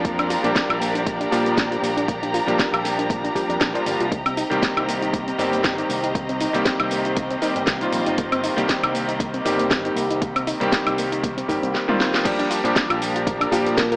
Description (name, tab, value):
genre	nu-disco, nu disco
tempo	118 BPM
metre	4/4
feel	swing 55% on 16ths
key	C minor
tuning	A4 = 440 Hz
part	clear electric grand piano	accompaniment	0.0-14.0 s	Eb3 to G4	-23 LUFS	equal	sidechain pumping, digital delay
part	warm studio violin section	sustained chords	0.0-14.0 s	Bb3 to Bb5	-26 LUFS	equal	sidechain pumping
part	soft round pluck	arpeggios	0.0-14.0 s	Bb3 to D5	-28 LUFS	equal	chorus, sidechain pumping, digital delay
part	picked electric bass with an envelope filter	bass	0.0-14.0 s	G1 to Bb2	-31 LUFS	equal	none
part	electronic kick drum	drums	0.0-13.9 s	none	-27 LUFS	equal	studio reverb
part	house drum kit	drums	0.1-14.0 s	crash cymbal, hi-hat, shaker, snare drum, toms, woodblock	-24 LUFS	equal	studio reverb
part	soft octave-layered synth lead	melody	13.5-14.0 s	G4 to Bb4	-22 LUFS	equal	chorus
room	light reverb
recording	AM radio sound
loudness	-19 LUFS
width	side -28 dB against mid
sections	0.0-12.3 A section; 12.3-14.0 B section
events	drum fill 11.7-12.3; band accent 12.1; drop 12.3-14.0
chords	0.0 Bb6; 4.1 Cm7; 12.3 Bb6